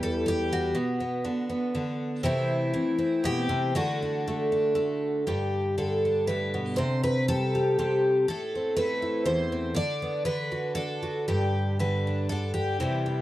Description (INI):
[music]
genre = folk, solo fingerstyle acoustic guitar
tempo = 120 BPM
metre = 3/4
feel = straight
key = G major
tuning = A4 = 440 Hz
[part]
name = picked twelve-string acoustic guitar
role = solo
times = 0.0-13.2 s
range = E2 to D5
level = -25 LUFS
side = equal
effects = none
[sound]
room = moderate studio reverb, RT60 0.6 s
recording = dark, warm production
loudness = -25 LUFS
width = side -15 dB against mid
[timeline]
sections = 0.0-5.3 A section; 5.3-13.2 B section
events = none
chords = 0.0 Em; 0.7 Bm; 2.2 Am/C; 3.7 D; 5.3 G; 6.8 Csus2; 8.3 Am; 9.8 Bm/D; 10.3 D; 11.3 G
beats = 0.24 | 0.74 1.23 1.73 | 2.23 2.73 3.23 | 3.73 4.23 4.74 | 5.25 5.77 6.28 | 6.78 7.28 7.78 | 8.27 8.77 9.26 | 9.76 10.26 10.77 | 11.28 11.78 12.29 | 12.79